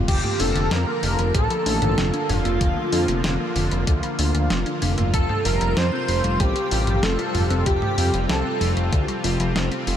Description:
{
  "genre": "synthwave",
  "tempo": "95 BPM",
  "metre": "4/4",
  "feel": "straight",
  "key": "unclear",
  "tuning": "A4 = 440 Hz",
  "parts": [
    { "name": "warm analog pad", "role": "sustained chords", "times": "0.0-10.0 s", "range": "C3 to F4", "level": "-28 LUFS", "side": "left 1 dB", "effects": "chorus, sidechain pumping" },
    { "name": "thumb-piano-like synth pluck", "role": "arpeggios", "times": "0.0-10.0 s", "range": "D3 to A4", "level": "-30 LUFS", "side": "right 2 dB", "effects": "chorus, cassette tape, tape echo" },
    { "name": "fat analog bass", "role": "bass", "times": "0.0-10.0 s", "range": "F1 to F2", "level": "-23 LUFS", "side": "equal", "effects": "sidechain pumping" },
    { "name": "wide unison lead", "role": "melody", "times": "0.1-8.9 s", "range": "F4 to C5", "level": "-26 LUFS", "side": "equal", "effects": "analog chorus, tape echo" },
    { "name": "airy dreamy lead", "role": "second line", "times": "0.1-8.9 s", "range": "F4 to C5", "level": "-33 LUFS", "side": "left 1 dB", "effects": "chorus, tape echo" },
    { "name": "clean 12-bit digital drum machine", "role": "drums", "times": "0.1-10.0 s", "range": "crash cymbal, hi-hat, snare drum, toms", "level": "-27 LUFS", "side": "equal", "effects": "none" },
    { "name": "electronic kick drum", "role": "drums", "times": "0.1-9.1 s", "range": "none", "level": "-22 LUFS", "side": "equal", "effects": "none" }
  ],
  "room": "moderate huge ambient reverb, RT60 9.3 s",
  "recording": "dreamy mix soaked in reverb",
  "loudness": "-19 LUFS",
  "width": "side -10 dB against mid",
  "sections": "0.1-10.0 A section",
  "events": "none",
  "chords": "0.1 Bbmaj7/F; 5.1 Fadd9"
}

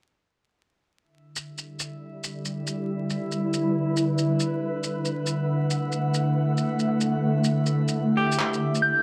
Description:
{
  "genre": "future garage",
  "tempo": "138 BPM",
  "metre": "4/4",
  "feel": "swing 66% on 16ths",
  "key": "E minor",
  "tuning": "A4 = 440 Hz",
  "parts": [
    { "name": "ethereal airy pad", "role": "sustained chords", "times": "1.8-9.0 s", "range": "D3 to F#5", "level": "-27 LUFS", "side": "equal", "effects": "ensemble chorus, built-in reverb, cassette tape" },
    { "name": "drifting glass-harmonics texture", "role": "texture", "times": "1.8-9.0 s", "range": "E4 to E5", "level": "-38 LUFS", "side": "equal", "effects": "chorus, built-in reverb, cassette tape" },
    { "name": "electronic shaker and handclaps", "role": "drums", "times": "1.4-8.8 s", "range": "none", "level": "-33 LUFS", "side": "equal", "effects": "overdrive, cassette tape" },
    { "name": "semi-hollow electric guitar", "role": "accompaniment", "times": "8.2-9.0 s", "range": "G4", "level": "-30 LUFS", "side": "equal", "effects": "cassette tape, analog delay" },
    { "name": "glassy synth bell", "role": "melody", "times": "8.8-9.0 s", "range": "G6", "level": "-22 LUFS", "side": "equal", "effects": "chorus, cassette tape" }
  ],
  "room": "light reverb, digital ambience",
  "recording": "home recording on cassette, vinyl crackle",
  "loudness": "-25 LUFS",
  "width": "mono",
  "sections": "1.0-9.0 A section",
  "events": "none",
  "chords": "1.0 Em7; 4.5 Bm7; 8.0 G6"
}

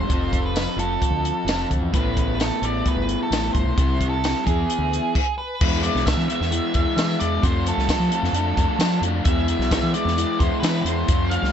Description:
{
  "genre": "indie rock",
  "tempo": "131 BPM",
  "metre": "4/4",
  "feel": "straight",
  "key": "unclear",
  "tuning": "A4 = 444 Hz",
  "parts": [
    { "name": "octave-fuzz lead guitar", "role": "melody", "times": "0.0-11.5 s", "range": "G#4 to F5", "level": "-27 LUFS", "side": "right 2 dB", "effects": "distortion" },
    { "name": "crunchy overdriven guitar", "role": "riff", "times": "0.0-11.5 s", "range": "C3 to A4", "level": "-24 LUFS", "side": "left 1 dB", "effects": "none" },
    { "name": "growling fingered electric bass", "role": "bass", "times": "0.0-11.5 s", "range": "F1 to F3", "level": "-24 LUFS", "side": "equal", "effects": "overdrive" },
    { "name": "compact cocktail drum kit", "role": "drums", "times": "0.1-11.5 s", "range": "crash cymbal, hi-hat, kick drum, snare drum, tambourine", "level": "-23 LUFS", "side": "equal", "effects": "none" }
  ],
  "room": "light reverb",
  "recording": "nothing above 8.0 kHz",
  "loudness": "-19 LUFS",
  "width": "side -8 dB against mid",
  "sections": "0.0-5.6 A section; 5.6-11.5 B section",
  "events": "none",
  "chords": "0.1 F; 1.9 Asus2; 3.8 C; 4.5 E; 7.4 F; 8.3 Dm/F; 9.3 E"
}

